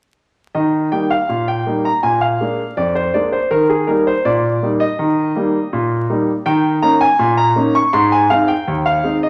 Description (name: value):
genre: ragtime piano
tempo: 81 BPM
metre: 2/4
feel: straight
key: Eb major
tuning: A4 = 438 Hz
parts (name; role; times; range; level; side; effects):
- clear concert grand piano; solo; 0.5-9.3 s; Eb2 to Db6; -16 LUFS; equal; none
room: wet large studio reverb, RT60 1.2 s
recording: vinyl crackle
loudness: -16 LUFS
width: mono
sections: 0.5-9.3 A section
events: none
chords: 0.5 Eb; 2.0 Bb7; 3.5 Eb; 6.5 Eb5; 7.9 Ab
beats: | 0.55 1.29 | 2.03 2.77 | 3.51 4.25 | 4.99 5.72 | 6.46 7.19 | 7.93 8.67